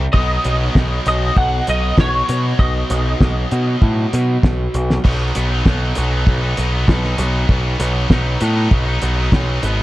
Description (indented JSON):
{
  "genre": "indie rock",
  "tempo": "98 BPM",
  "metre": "4/4",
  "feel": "straight",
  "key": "unclear",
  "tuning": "A4 = 442 Hz",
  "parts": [
    { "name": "heavy high-gain guitar", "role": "riff", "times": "0.0-9.8 s", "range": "B2 to E4", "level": "-22 LUFS", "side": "right 1 dB", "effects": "distortion" },
    { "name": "growling picked electric bass", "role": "bass", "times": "0.0-9.8 s", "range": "G#1 to B2", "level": "-18 LUFS", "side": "equal", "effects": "overdrive" },
    { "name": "twelve-string electric guitar", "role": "melody", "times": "0.1-3.8 s", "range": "C#5 to F#5", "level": "-21 LUFS", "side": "equal", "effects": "ensemble chorus, analog delay" },
    { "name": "cloth-damped thuddy drum kit", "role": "drums", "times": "0.1-9.8 s", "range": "crash cymbal, hi-hat, kick drum, snare drum", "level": "-15 LUFS", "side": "equal", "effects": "none" }
  ],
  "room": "light reverb",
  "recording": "dark, warm production",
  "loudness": "-14 LUFS",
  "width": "side -16 dB against mid",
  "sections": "0.0-5.0 A section; 5.0-9.8 B section",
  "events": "none",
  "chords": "0.1 B"
}